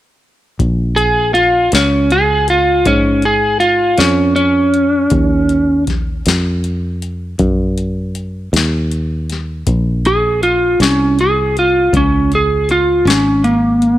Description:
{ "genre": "slow blues", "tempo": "53 BPM (dotted quarters)", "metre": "12/8", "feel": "straight", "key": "Bb minor", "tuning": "A4 = 444 Hz", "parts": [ { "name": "fingered electric bass", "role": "bass", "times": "0.6-14.0 s", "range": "Ab1 to Ab2", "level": "-17 LUFS", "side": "equal", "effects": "none" }, { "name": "booming analog drum machine", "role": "drums", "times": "0.6-14.0 s", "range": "hi-hat, kick drum, snare drum", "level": "-19 LUFS", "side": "left 2 dB", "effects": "none" }, { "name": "lightly driven lead guitar", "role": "melody", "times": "1.0-14.0 s", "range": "Bb3 to Ab4", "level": "-12 LUFS", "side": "equal", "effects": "slapback echo" } ], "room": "digital ambience", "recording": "1960s-style stereo", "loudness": "-11 LUFS", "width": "side -14 dB against mid", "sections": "0.6-14.0 A section", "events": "lead electric guitar solo 0.6-14.0", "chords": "0.6 Bbm7; 5.1 Ebmadd9; 9.7 Bbm9" }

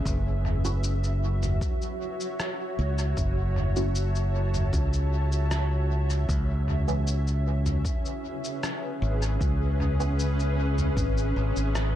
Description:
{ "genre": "ambient dub", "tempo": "77 BPM", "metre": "4/4", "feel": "straight", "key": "F# minor", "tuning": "A4 = 441 Hz", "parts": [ { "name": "granular cloud pad", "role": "sustained chords", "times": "0.0-12.0 s", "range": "C#4 to A5", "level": "-32 LUFS", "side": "equal", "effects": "built-in reverb" }, { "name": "modern bright fingered electric bass", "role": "bass", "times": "0.0-12.0 s", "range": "F#1 to C#2", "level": "-25 LUFS", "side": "equal", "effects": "none" }, { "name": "electronic kick drum", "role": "drums", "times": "0.1-11.1 s", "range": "none", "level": "-30 LUFS", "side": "equal", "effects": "overdrive" }, { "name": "lo-fi sampler-style drum kit", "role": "drums", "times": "0.1-11.9 s", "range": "rim click, shaker, toms", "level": "-34 LUFS", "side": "equal", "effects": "dub echo" }, { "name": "filtered dub chord stab", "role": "stabs", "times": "0.6-10.2 s", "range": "E3 to F#4", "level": "-36 LUFS", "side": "right 2 dB", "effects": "phaser, wide subtle chorus, dub echo" } ], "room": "digital ambience", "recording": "echo-heavy mix", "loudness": "-24 LUFS", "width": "side -12 dB against mid", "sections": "0.1-12.0 A section", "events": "none", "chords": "0.1 F#m7; 6.3 C#m7" }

